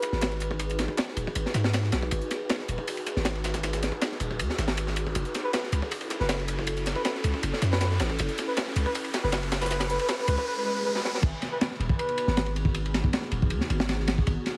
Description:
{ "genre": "drum and bass, jungle", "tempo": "158 BPM", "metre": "4/4", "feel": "straight", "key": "G# phrygian", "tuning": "A4 = 438 Hz", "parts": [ { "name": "trumpet with bucket mute", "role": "melody", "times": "0.0-0.4, 5.4-12.5 s", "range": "B4", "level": "-34 LUFS", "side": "equal", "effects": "vintage 12-bit sampler grit, low-pass filter, dub echo" }, { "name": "ethereal airy pad", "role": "sustained chords", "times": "0.0-14.6 s", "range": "B3 to B4", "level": "-38 LUFS", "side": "equal", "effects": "ensemble chorus, built-in reverb" }, { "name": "crunchy breakbeat drum kit", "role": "drums", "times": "0.0-14.6 s", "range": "crash cymbal, kick drum, ride cymbal, snare drum", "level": "-32 LUFS", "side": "equal", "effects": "high-pass filter on kick, high-pass filter on cymbals, high-pass filter on snare, high-pass filter on room" }, { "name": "dusty soul sampler-style drum kit", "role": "drums", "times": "0.0-10.4 s", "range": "hi-hat, snare drum", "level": "-39 LUFS", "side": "equal", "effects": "overdrive, high-pass filter on hats, high-pass filter on snare" }, { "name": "riser and swell", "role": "sound effects", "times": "1.2-11.2 s", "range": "none", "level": "-41 LUFS", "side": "equal", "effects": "none" }, { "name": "long sustained 808-style bass", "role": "bass", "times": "0.1-14.4 s", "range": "D#1 to G#2", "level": "-31 LUFS", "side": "equal", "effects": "none" } ], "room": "moderate digital room reverb, RT60 1.2 s, studio ambience", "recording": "heavily compressed radio sound, vinyl crackle", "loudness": "-28 LUFS", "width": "mono", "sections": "0.0-11.2 A section; 11.2-14.6 B section", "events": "build-up 0.0-11.2; filter sweep on muted trumpet 0.0-11.2; riser 1.2-11.2; swell 10.5-11.2; drum fill 10.9; drop 11.2-14.6", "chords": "0.0 G#m7; 5.2 F#m7; 11.2 G#m7" }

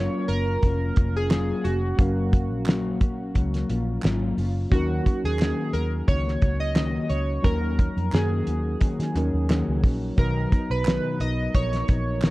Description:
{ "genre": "indie pop, bedroom pop", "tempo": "88 BPM", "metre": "4/4", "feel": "swing 55% on 16ths", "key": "F# major", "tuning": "A4 = 442 Hz", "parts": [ { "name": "chorused retro synth keys", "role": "melody", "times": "0.0-12.3 s", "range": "F#4 to D#5", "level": "-30 LUFS", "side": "right 2 dB", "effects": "wide subtle chorus, analog delay" }, { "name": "mellow electric guitar", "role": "accompaniment", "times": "0.0-12.3 s", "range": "B2 to A#4", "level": "-29 LUFS", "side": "left 3 dB", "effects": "analog chorus, vibrato effect" }, { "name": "tine electric piano", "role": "accompaniment", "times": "0.0-12.3 s", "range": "F#3 to A#5", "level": "-33 LUFS", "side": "right 2 dB", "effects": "fast stereo tremolo, cassette tape" }, { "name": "vintage muted fingered electric bass", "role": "bass", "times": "0.0-12.3 s", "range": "E#1 to D#3", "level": "-26 LUFS", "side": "equal", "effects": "tube saturation" }, { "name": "damped 70s drum kit", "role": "drums", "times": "0.3-12.3 s", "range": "hi-hat, kick drum, snare drum", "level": "-22 LUFS", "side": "equal", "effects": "vintage 12-bit sampler grit" }, { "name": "group handclap", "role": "percussion", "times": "1.3-12.3 s", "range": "none", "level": "-41 LUFS", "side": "right 4 dB", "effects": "none" } ], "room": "small room ambience", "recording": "worn, warbling old tape, cassette tape, warbly pitch drift", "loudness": "-21 LUFS", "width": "side -19 dB against mid", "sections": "0.0-12.3 A section", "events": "none", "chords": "0.0 F#maj7; 4.7 D#m7; 10.2 Bmaj7" }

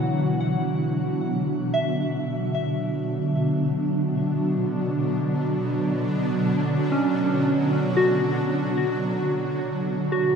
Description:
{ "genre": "ambient", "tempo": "free time", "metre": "none", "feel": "none", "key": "B minor", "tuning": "A4 = 440 Hz", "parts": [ { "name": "shimmering ambient pad", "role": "sustained chords", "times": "0.0-10.4 s", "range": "B2 to F#3", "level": "-23 LUFS", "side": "right 1 dB", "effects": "chorus, built-in reverb, shimmer reverb" }, { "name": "soft synth bell", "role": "arpeggios", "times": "0.0-10.4 s", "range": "C#4 to F#5", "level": "-26 LUFS", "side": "equal", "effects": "chorus, phaser, ping-pong delay, shimmer reverb" } ], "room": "wet cathedral reverb, RT60 6.0 s", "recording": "in a vast, echoing space, faint mains hum", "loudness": "-22 LUFS", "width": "side -6 dB against mid", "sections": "0.0-10.4 A section", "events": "none", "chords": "0.0 Bmadd9" }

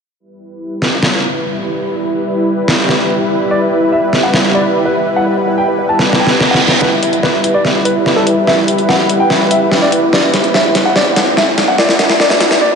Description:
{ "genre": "heavy wobble dubstep", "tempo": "145 BPM", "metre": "4/4", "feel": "half-time", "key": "E minor", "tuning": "A4 = 440 Hz", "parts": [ { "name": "supersaw pad", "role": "sustained chords", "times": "0.2-12.6 s", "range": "G3 to B4", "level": "-16 LUFS", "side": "equal", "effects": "low-pass filter" }, { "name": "dubstep drum kit", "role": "drums", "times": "0.8-12.6 s", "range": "hi-hat, snare drum", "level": "-14 LUFS", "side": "equal", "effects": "none" }, { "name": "warm grand piano", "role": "melody", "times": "3.5-12.8 s", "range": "E4 to A5", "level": "-15 LUFS", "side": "equal", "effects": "diffuse ambient delay" }, { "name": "reverse cymbal and riser", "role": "sound effects", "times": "6.2-12.8 s", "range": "none", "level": "-22 LUFS", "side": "right 2 dB", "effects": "none" } ], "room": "wet cathedral reverb, RT60 5.4 s", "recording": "dreamy mix soaked in reverb, high-pass filter, nothing above 10.6 kHz", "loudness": "-10 LUFS", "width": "side -6 dB against mid", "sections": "0.2-6.8 A section; 6.8-12.8 B section", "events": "filter sweep on supersaw synth 0.2-6.8, 6.8-12.8; drum fill 6.0-6.8, 6.8-12.6; reverse cymbal 6.2-6.8; build-up 6.8-12.8", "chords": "0.2 Em" }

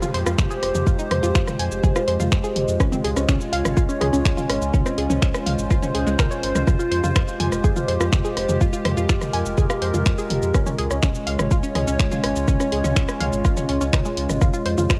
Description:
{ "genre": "melodic techno", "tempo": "124 BPM", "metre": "4/4", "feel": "straight", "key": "F minor", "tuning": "A4 = 440 Hz", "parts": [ { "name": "dark analog pad", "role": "sustained chords", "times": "0.0-15.0 s", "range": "Ab3 to Db5", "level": "-27 LUFS", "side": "equal", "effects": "chorus, phaser, sidechain pumping, cassette tape" }, { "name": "unison pluck", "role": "arpeggios", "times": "0.0-15.0 s", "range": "Ab3 to Ab5", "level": "-30 LUFS", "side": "equal", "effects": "sidechain pumping, cassette tape, tape echo" }, { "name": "punchy analog drum machine", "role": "drums", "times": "0.0-15.0 s", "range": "finger snaps, hi-hat, rim click, shaker, toms", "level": "-28 LUFS", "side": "equal", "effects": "cassette tape" }, { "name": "downlifter", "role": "sound effects", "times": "0.0-2.8 s", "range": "none", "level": "-44 LUFS", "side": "equal", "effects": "none" }, { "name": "round analog bass", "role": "bass", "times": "0.1-15.0 s", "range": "F1 to F2", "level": "-29 LUFS", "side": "equal", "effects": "tube saturation, sidechain pumping" }, { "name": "electronic kick drum", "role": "drums", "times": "0.4-15.0 s", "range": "none", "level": "-22 LUFS", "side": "equal", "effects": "cassette tape" } ], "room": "light reverb", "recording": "home recording on cassette", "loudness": "-21 LUFS", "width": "mono", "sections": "0.0-15.0 A section", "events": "none", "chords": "0.0 Fmadd9; 2.8 Db; 6.7 Fmadd9; 10.5 Db; 14.4 Fmadd9" }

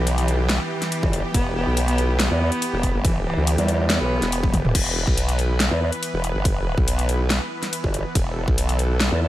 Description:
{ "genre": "heavy wobble dubstep", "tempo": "141 BPM", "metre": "4/4", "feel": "half-time", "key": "E minor", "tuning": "A4 = 440 Hz", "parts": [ { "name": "dark cello", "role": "melody", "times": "0.0-4.7 s", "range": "E3 to B3", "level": "-26 LUFS", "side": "equal", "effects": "dub echo" }, { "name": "supersaw pad", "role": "sustained chords", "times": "0.0-9.3 s", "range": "E3 to B4", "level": "-30 LUFS", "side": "equal", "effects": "sidechain pumping" }, { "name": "formant-sweep wobble bass", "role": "bass", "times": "0.0-9.1 s", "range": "E1 to D2", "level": "-22 LUFS", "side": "equal", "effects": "chorus, overdrive" }, { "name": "dubstep drum kit", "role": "drums", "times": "0.1-9.1 s", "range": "crash cymbal, hi-hat, ride cymbal, snare drum, toms", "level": "-25 LUFS", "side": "left 1 dB", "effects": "none" }, { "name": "formant-sweep wobble bass", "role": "bass", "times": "1.0-9.3 s", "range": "G1 to E2", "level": "-21 LUFS", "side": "equal", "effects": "chorus, overdrive" }, { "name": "electronic kick drum", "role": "drums", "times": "1.0-8.6 s", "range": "none", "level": "-22 LUFS", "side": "equal", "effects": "none" } ], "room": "digital ambience", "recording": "none", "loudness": "-19 LUFS", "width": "side -14 dB against mid", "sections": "0.0-4.7 A section; 4.7-9.3 A section", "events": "drop 0.0-4.7, 4.7-9.3; drum fill 4.4-4.7", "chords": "0.0 E5" }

